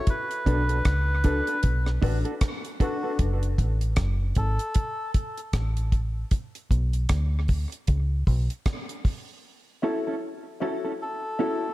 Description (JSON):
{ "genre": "dub reggae", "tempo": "77 BPM", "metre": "4/4", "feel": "swing 59% on 16ths", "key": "F# minor", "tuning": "A4 = 440 Hz", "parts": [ { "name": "melodica", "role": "melody", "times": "0.0-5.1, 11.0-11.7 s", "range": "F#4 to B4", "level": "-31 LUFS", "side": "equal", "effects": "tape echo" }, { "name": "warm upright piano", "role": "stabs", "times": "0.0-3.2, 9.8-11.6 s", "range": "D4 to B4", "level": "-32 LUFS", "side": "left 5 dB", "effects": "tape echo" }, { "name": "deep reggae drum kit", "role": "drums", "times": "0.1-9.3 s", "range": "hi-hat, kick drum, rim click", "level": "-25 LUFS", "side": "equal", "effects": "none" }, { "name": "mellow electric guitar", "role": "accompaniment", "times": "0.5-3.1, 9.8-11.5 s", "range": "C#4 to A4", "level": "-32 LUFS", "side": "right 4 dB", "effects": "spring reverb, tape echo" }, { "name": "deep dub fingered electric bass", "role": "bass", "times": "0.5-8.5 s", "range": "F#1 to D2", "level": "-24 LUFS", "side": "equal", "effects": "none" } ], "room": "light reverb, small room ambience", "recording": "dark, warm production", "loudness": "-24 LUFS", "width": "side -17 dB against mid", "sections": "0.0-9.4 A section; 9.4-11.7 B section", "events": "break 9.4-11.7", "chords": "0.1 Bm7; 3.2 F#m; 6.3 Bm; 7.9 Bsus2; 9.4 F#m7" }